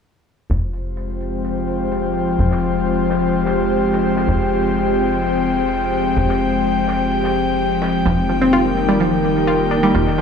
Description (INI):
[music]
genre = melodic techno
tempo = 127 BPM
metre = 4/4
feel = straight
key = F minor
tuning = A4 = 440 Hz
[part]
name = evolving wavetable pad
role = sustained chords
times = 1.0-10.2 s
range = Eb3 to C5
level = -20 LUFS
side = left 1 dB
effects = chorus, built-in reverb
[part]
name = tight sequencer bass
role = bass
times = 0.5-10.2 s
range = F1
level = -24 LUFS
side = equal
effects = none
[part]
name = modern studio drum kit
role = drums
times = 0.5-10.2 s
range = hi-hat, snare drum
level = -36 LUFS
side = equal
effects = none
[part]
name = airy breathy pad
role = texture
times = 0.8-10.2 s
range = Ab3 to G5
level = -20 LUFS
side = left 2 dB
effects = chorus
[part]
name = analog pluck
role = arpeggios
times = 8.1-10.2 s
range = F3 to F4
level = -18 LUFS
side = right 1 dB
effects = chorus, digital delay
[sound]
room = light reverb, small room ambience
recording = studio reverb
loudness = -16 LUFS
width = side -6 dB against mid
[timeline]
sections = 0.5-10.2 A section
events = none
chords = 0.5 Fmadd9; 8.1 Eb/F